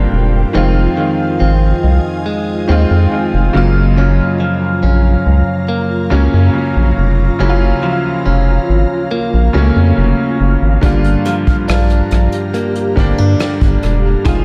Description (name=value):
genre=contemporary R&B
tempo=70 BPM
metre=4/4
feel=straight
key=unclear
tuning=A4 = 440 Hz
part: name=clear grand piano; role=accompaniment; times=0.0-14.4 s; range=Db3 to F4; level=-20 LUFS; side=equal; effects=analog delay
part: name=ethereal airy pad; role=sustained chords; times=0.0-14.4 s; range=F3 to Bb5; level=-26 LUFS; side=equal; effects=ensemble chorus, built-in reverb, phaser, sidechain pumping
part: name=direct-recorded clean electric guitar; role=arpeggios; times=0.0-14.4 s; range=F2 to Ab4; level=-21 LUFS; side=equal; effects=analog delay
part: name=round analog bass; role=bass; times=0.0-14.4 s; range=E1 to G2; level=-14 LUFS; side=equal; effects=none
part: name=vintage brush drum kit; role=drums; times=10.8-14.4 s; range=hi-hat, kick drum, rim click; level=-19 LUFS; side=equal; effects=analog delay
room=light reverb, small room ambience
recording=echo-heavy mix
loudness=-13 LUFS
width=mono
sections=0.0-14.4 A section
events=none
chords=0.0 Gm7; 0.5 Fm7; 3.5 Gbmaj7; 10.8 Gm7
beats=| 0.54 1.40 2.26 3.11 | 3.97 4.83 5.68 6.54 | 7.40 8.26 9.11 9.97 | 10.83 11.68 12.54 13.40 | 14.26